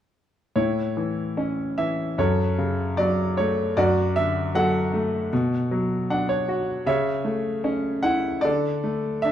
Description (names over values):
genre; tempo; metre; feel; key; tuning
classical, lyrical solo piano; 76 BPM; 4/4; rubato; A major; A4 = 440 Hz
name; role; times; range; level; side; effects
clear grand piano; solo; 0.6-9.3 s; F#2 to F#5; -21 LUFS; equal; none
room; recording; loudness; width
moderate recital hall reverb, RT60 1.4 s; dark, warm production; -21 LUFS; side -10 dB against mid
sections
0.6-9.3 A section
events
grand piano fill 5.7-6.9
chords
0.6 A; 2.2 F#m; 3.8 D/F#; 5.3 Bm; 6.9 A/C#; 8.4 D5